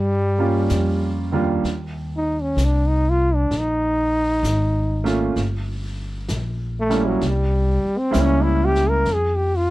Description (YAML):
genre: jazz ballad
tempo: 65 BPM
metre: 4/4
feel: swing 68% on 8ths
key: Eb major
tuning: A4 = 439 Hz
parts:
  - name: brilliant trombone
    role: melody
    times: 0.0-9.7 s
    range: Gb3 to Bb4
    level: -21 LUFS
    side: equal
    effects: none
  - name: upright bass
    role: bass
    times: 0.0-9.7 s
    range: G1 to G2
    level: -22 LUFS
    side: equal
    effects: none
  - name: warm concert grand piano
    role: accompaniment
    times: 0.4-9.1 s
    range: Eb2 to F4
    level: -23 LUFS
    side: right 3 dB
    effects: none
  - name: vintage brush drum kit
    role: drums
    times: 0.7-9.7 s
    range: brushed snare drum, hi-hat, snare drum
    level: -36 LUFS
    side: left 1 dB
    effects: none
room: little or no reverb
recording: none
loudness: -18 LUFS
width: side -17 dB against mid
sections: 0.0-1.6 A section; 1.6-9.7 B section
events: trombone solo 1.6-9.7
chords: 0.0 Eb7; 1.6 Eb5; 5.4 Gdim; 7.2 C7b9; 9.1 Fmadd9